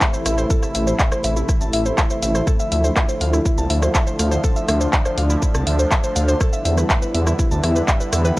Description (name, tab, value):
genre	melodic techno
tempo	122 BPM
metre	4/4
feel	straight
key	A minor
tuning	A4 = 442 Hz
part	sweeping resonant pad	sustained chords	0.0-8.4 s	C3 to E4	-24 LUFS	equal	chorus, sidechain pumping
part	woody wave-folded pluck	arpeggios	0.0-8.4 s	E4 to A5	-24 LUFS	equal	chorus, sidechain pumping, tape echo
part	electronic kick drum	drums	0.0-8.4 s	none	-19 LUFS	equal	none
part	house drum kit	drums	0.0-8.4 s	handclaps, hi-hat, rim click, shaker	-23 LUFS	equal	sidechain pumping on cymbals, sidechain pumping on perc, sidechain pumping on hats
part	dark detuned saw bass	bass	0.3-8.3 s	A1 to E2	-19 LUFS	equal	tube saturation, sidechain pumping
room	little or no reverb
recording	dry, gritty hardware recording, cassette tape, lossy compression artefacts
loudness	-16 LUFS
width	side -19 dB against mid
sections	0.0-8.4 A section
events	none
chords	0.0 Am; 2.5 Dmadd9; 6.4 Em7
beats	0.01 | 0.51 1.00 1.49 1.98 | 2.47 2.96 3.46 3.95 | 4.44 4.93 5.42 5.92 | 6.41 6.90 7.39 7.88 | 8.37